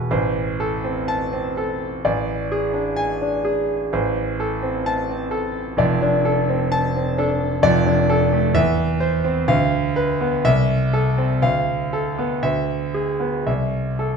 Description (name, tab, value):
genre	classical, romantic character piece for solo piano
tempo	57-66 BPM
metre	2/4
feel	rubato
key	A minor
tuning	A4 = 435 Hz
part	clear concert grand piano	solo	0.0-14.2 s	E1 to A5	-18 LUFS	equal	none
room	wet recital hall reverb, RT60 1.6 s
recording	none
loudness	-18 LUFS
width	side -6 dB against mid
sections	0.1-14.2 A section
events	none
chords	0.1 Am; 2.0 Asus4; 3.9 Am; 5.8 F6; 7.6 Dm/F; 8.5 C/E; 9.5 Bdim/D; 10.4 Am/C; 11.4 Bm7b5/D; 12.4 E7/D; 13.5 Am/C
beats	| 0.10 1.08 | 2.04 2.97 | 3.92 4.87 | 5.79 6.72 | 7.64 8.55 | 9.48 10.45 | 11.42 12.43 | 13.47